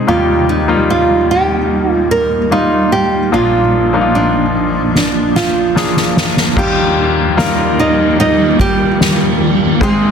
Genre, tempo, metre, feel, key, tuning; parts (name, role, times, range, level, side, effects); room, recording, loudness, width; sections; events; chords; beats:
pop ballad; 74 BPM; 4/4; straight; Eb major; A4 = 439 Hz
bright concert grand piano; accompaniment; 0.0-10.1 s; Ab1 to C5; -16 LUFS; left 3 dB
granular cloud pad; sustained chords; 0.0-10.1 s; Eb3 to F4; -17 LUFS; equal; built-in reverb
nylon-string guitar; melody; 0.1-10.1 s; F3 to Eb5; -15 LUFS; right 3 dB
soft-mallet drum kit; drums; 5.0-10.0 s; crash cymbal, kick drum, ride cymbal, snare drum; -16 LUFS; equal
moderate lush hall reverb, RT60 2.0 s; dense, heavily limited modern master; -10 LUFS; side -7 dB against mid
0.0-6.6 A section; 6.6-10.1 B section
drum fill 4.9-6.6
0.1 Eb; 3.3 Bb; 6.6 Ebadd9
| 0.08 0.89 1.70 2.51 | 3.32 4.13 4.95 5.76 | 6.57 7.38 8.19 9.00 | 9.81